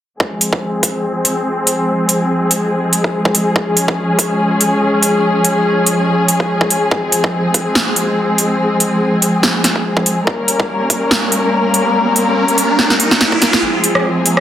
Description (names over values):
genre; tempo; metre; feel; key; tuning
heavy wobble dubstep; 143 BPM; 4/4; swing 55% on 16ths, half-time; F minor; A4 = 441 Hz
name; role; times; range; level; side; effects
muted studio string section; sustained chords; 0.2-14.4 s; F3 to Bb4; -14 LUFS; left 1 dB; sidechain pumping, low-pass filter
electronic kick drum; drums; 0.2-13.4 s; none; -18 LUFS; right 1 dB; high-pass filter on kick, high-pass filter on room
big-room dance drum kit; drums; 0.4-14.4 s; hi-hat, rim click, snare drum; -14 LUFS; right 1 dB; none
riser; sound effects; 11.1-14.4 s; none; -19 LUFS; right 2 dB; none
room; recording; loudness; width
moderate lush hall reverb, RT60 2.1 s; heavily compressed radio sound; -12 LUFS; side -11 dB against mid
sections
0.2-13.6 A section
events
filter sweep on string section 0.2-13.6; riser 11.1-13.6, 13.6-14.4; drum fill 12.8-13.6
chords
0.2 Fm; 3.6 Db; 6.9 Fm; 10.3 Gdim; 13.6 Fm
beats
| 0.20 0.62 1.04 1.46 | 1.88 2.30 2.72 3.14 | 3.56 3.98 4.40 4.82 | 5.24 5.66 6.08 6.50 | 6.91 7.33 7.75 8.17 | 8.59 9.01 9.43 9.85 | 10.27 10.69 11.11 11.53 | 11.95 12.37 12.79 13.21 | 13.63 14.05